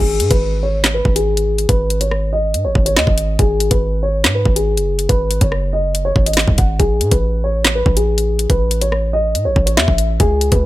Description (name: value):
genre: hip hop, drill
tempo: 141 BPM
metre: 4/4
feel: half-time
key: G# phrygian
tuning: A4 = 440 Hz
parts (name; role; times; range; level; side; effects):
- dark concert grand piano; melody; 0.0-10.7 s; G#4 to F#5; -19 LUFS; left 1 dB; low-pass filter
- hard-hitting 808-style bass; bass; 0.0-10.7 s; F#1 to A2; -18 LUFS; equal; none
- drill drum kit; drums; 0.2-10.6 s; handclaps, hi-hat, kick drum, rim click, snare drum; -16 LUFS; equal; overdrive
room: digital ambience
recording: none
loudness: -13 LUFS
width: side -16 dB against mid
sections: 0.0-10.7 A section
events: filter sweep on grand piano 0.0-10.7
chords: 0.0 G#m7; 6.8 A5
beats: 0.41 0.84 1.26 | 1.69 2.12 2.54 2.97 | 3.39 3.82 4.24 4.67 | 5.09 5.52 5.95 6.37 | 6.80 7.22 7.65 8.07 | 8.50 8.92 9.35 9.78 | 10.20 10.63